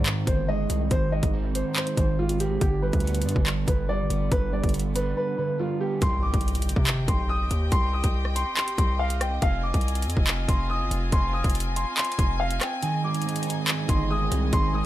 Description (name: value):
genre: hip hop, drill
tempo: 141 BPM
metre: 4/4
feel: half-time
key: C harmonic minor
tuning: A4 = 439 Hz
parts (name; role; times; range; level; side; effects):
- dark concert grand piano; melody; 0.0-14.9 s; F4 to Eb6; -29 LUFS; left 1 dB; digital delay
- electric guitar at the edge of break-up; accompaniment; 0.0-6.0, 12.8-14.9 s; D3 to Eb4; -28 LUFS; right 5 dB; ensemble chorus
- hard-hitting 808-style bass; bass; 0.0-14.8 s; F1 to C3; -27 LUFS; equal; none
- drill drum kit; drums; 0.1-14.6 s; handclaps, hi-hat, kick drum, rim click; -25 LUFS; equal; none
- warm symphonic string section; sustained chords; 6.0-14.9 s; C4 to Ab5; -33 LUFS; left 2 dB; none
- impact; sound effects; 6.0-7.7 s; none; -34 LUFS; equal; none
room: little or no reverb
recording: lossy compression artefacts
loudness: -22 LUFS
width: side -14 dB against mid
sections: 0.0-6.0 A section; 6.0-14.9 B section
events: drums muted 5.2-6.0; impact 6.0-7.7; kick muted 12.8-13.7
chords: 0.0 Ab; 2.6 G; 6.0 Cm; 9.4 Fm7; 12.8 Ab